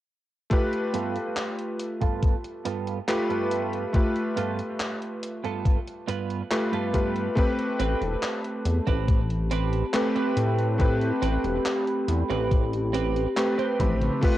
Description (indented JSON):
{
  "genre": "vaporwave",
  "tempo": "70 BPM",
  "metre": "4/4",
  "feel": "straight",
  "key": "A minor",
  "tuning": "A4 = 440 Hz",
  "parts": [
    { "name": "clear electric grand piano", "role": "accompaniment", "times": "0.5-14.4 s", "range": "A3 to B5", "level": "-28 LUFS", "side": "left 1 dB", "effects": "lush chorus, cassette tape, tape echo" },
    { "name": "electronic kick drum", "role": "drums", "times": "0.5-14.4 s", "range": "none", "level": "-23 LUFS", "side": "equal", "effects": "cassette tape" },
    { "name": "gated 80s digital drum machine", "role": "drums", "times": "0.5-14.4 s", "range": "crash cymbal, handclaps, hi-hat, toms", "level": "-34 LUFS", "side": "left 1 dB", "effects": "gated reverb, cassette tape" },
    { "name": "clean electric guitar", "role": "riff", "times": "0.9-14.1 s", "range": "G2 to C5", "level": "-32 LUFS", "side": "right 7 dB", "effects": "lush chorus, vintage 12-bit sampler grit, low-pass filter, cassette tape, tape echo" },
    { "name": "warbly tape-like pad", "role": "sustained chords", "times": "8.5-14.4 s", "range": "C4 to B5", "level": "-31 LUFS", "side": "left 1 dB", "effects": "chorus, built-in reverb, vintage 12-bit sampler grit, cassette tape" },
    { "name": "chorused synth bass", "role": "bass", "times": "7.8-14.1 s", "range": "E1 to A2", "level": "-26 LUFS", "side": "equal", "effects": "tube saturation" }
  ],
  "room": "light reverb",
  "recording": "home recording on cassette",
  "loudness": "-23 LUFS",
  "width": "side -14 dB against mid",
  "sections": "0.5-14.2 A section",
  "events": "filter sweep on clean electric guitar 0.5-14.2; drum fill 13.8-14.2",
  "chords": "0.5 G9; 7.4 Am9",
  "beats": "| 0.51 1.37 2.23 3.08 | 3.94 4.80 5.66 6.51 | 7.37 8.23 9.08 9.94 | 10.80 11.66 12.51 13.37 | 14.23"
}